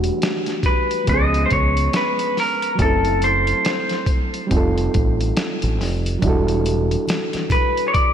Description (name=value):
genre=R&B, neo-soul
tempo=70 BPM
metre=4/4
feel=swing 59% on 16ths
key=unclear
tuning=A4 = 440 Hz
part: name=overdriven reed electric piano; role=accompaniment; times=0.0-8.1 s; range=E3 to A4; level=-23 LUFS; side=right 2 dB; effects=none
part: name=deep dub fingered electric bass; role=bass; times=0.0-7.0 s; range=E1 to C#2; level=-21 LUFS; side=equal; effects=none
part: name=boom bap sampler-style drum kit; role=drums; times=0.0-8.1 s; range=hi-hat, kick drum, snare drum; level=-22 LUFS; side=equal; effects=none
part: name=electric guitar through a small old amp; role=melody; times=0.7-8.1 s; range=A4 to D#5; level=-20 LUFS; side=left 1 dB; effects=none
part: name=congas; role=percussion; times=6.2-8.1 s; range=none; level=-33 LUFS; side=left 4 dB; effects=none
room=moderate lush hall reverb, RT60 3.1 s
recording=big arena sound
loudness=-17 LUFS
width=side -9 dB against mid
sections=0.0-8.1 A section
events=none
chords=0.0 Em11; 1.1 C#7; 2.8 F#m7b5; 4.5 F9; 6.2 Em11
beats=0.22 1.08 1.94 | 2.79 3.65 4.51 5.37 | 6.22 7.08 7.94